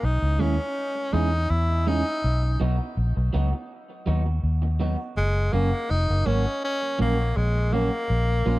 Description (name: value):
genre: roots reggae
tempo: 82 BPM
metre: 4/4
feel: straight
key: F# major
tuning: A4 = 441 Hz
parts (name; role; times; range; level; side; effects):
- bright tenor saxophone; melody; 0.0-8.6 s; G#3 to E4; -27 LUFS; left 1 dB; dub echo
- vintage muted fingered electric bass; bass; 0.0-8.6 s; E#1 to E2; -22 LUFS; equal; none
- electric guitar at the edge of break-up; accompaniment; 0.4-8.6 s; E#3 to G#4; -30 LUFS; right 3 dB; spring reverb, dub echo
room: little or no reverb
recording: dry, close 1970s-style studio recording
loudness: -22 LUFS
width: side -18 dB against mid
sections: 0.0-8.6 A section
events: none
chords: 0.0 C#m; 2.2 B; 5.2 F#